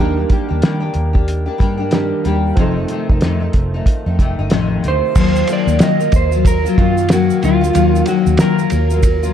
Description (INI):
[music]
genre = indie pop, bedroom pop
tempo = 93 BPM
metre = 4/4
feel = swing 60% on 16ths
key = unclear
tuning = A4 = 439 Hz
[part]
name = nylon-string guitar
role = accompaniment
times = 0.0-9.3 s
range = F2 to G4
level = -18 LUFS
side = left 8 dB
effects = lush chorus, warbly pitch drift
[part]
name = warm upright piano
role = accompaniment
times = 0.0-5.2 s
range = F3 to Bb4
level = -24 LUFS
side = right 6 dB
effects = cassette tape
[part]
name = vintage muted fingered electric bass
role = bass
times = 0.0-9.3 s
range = F1 to Eb3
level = -18 LUFS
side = right 1 dB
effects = none
[part]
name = cloth-damped thuddy drum kit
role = drums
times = 0.3-9.2 s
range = crash cymbal, hi-hat, kick drum, ride cymbal, snare drum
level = -16 LUFS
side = equal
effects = none
[part]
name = electric guitar through a small old amp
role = melody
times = 4.9-9.3 s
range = F4 to Eb5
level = -18 LUFS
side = right 4 dB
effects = lush chorus, slapback echo
[part]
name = tube shaker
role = percussion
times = 5.2-9.3 s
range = none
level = -36 LUFS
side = right 10 dB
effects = none
[sound]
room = light reverb, small room ambience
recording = dark, warm production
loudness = -13 LUFS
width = side -9 dB against mid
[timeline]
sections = 0.0-5.2 A section; 5.2-9.3 B section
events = none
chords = 0.0 Ebmaj7; 2.6 F7; 5.2 Ebmadd9